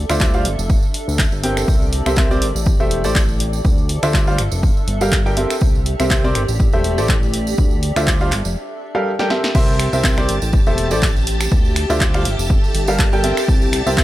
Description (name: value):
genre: piano house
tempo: 122 BPM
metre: 4/4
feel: swing 55% on 16ths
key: G dorian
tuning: A4 = 440 Hz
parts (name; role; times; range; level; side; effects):
- fat analog bass; bass; 0.0-14.0 s; E1 to D2; -21 LUFS; equal; sidechain pumping
- granular cloud pad; texture; 0.0-14.0 s; G4 to E5; -28 LUFS; equal; built-in reverb, sidechain pumping
- clear upright piano; riff; 0.1-14.0 s; D3 to G5; -21 LUFS; equal; sidechain pumping, dub echo
- punchy analog drum machine; drums; 0.1-14.0 s; crash cymbal, finger snaps, handclaps, hi-hat, snare drum; -23 LUFS; equal; none
- tambourine; percussion; 0.1-14.0 s; none; -32 LUFS; right 7 dB; none
- electronic kick drum; drums; 0.2-14.0 s; none; -17 LUFS; equal; none
- string machine, violins; sustained chords; 9.6-14.0 s; G4 to A5; -24 LUFS; equal; ensemble chorus, vintage 12-bit sampler grit, sidechain pumping
room: digital ambience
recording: none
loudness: -14 LUFS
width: side -15 dB against mid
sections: 0.0-9.5 A section; 9.5-14.0 B section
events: break 8.6-9.5; drum fill 9.2-9.5; drop 9.5-14.0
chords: 0.5 Gm9; 1.7 C7; 2.7 Am7; 3.6 Dm9; 4.4 Gm9; 5.6 C7; 6.6 Am7; 7.6 Dm9; 8.3 Gm9; 9.5 C7; 10.5 Am7; 11.5 Dm9; 12.3 Gm9; 13.5 C7